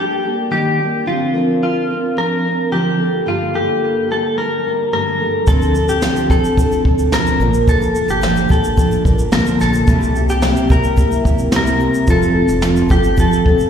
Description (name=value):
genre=acoustic pop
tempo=109 BPM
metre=4/4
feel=straight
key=Bb major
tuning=A4 = 438 Hz
part: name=direct-recorded clean electric guitar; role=melody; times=0.0-13.7 s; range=F4 to Bb4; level=-19 LUFS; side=left 2 dB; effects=lush chorus, slapback echo, digital delay
part: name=fingerpicked steel-string acoustic guitar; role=accompaniment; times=0.0-13.7 s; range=G2 to Bb4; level=-17 LUFS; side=equal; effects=double-tracked left and right, slapback echo
part: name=upright bass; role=bass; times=5.5-13.7 s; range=F1 to D2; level=-19 LUFS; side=equal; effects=none
part: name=jazz brush drum kit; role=drums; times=5.5-13.7 s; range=kick drum, shaker, snare drum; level=-17 LUFS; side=equal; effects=none
part: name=tube shaker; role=percussion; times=5.5-13.7 s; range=none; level=-45 LUFS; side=left 2 dB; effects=none
room=light reverb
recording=live gig heard through the venue's PA, recital hall reverb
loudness=-13 LUFS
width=side -8 dB against mid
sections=0.0-5.5 A section; 5.5-13.7 B section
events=none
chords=0.0 Ebmaj7; 1.1 Bbadd9/D; 3.0 Gmadd9; 5.5 Dm7; 7.4 Bb; 9.9 C7; 12.1 F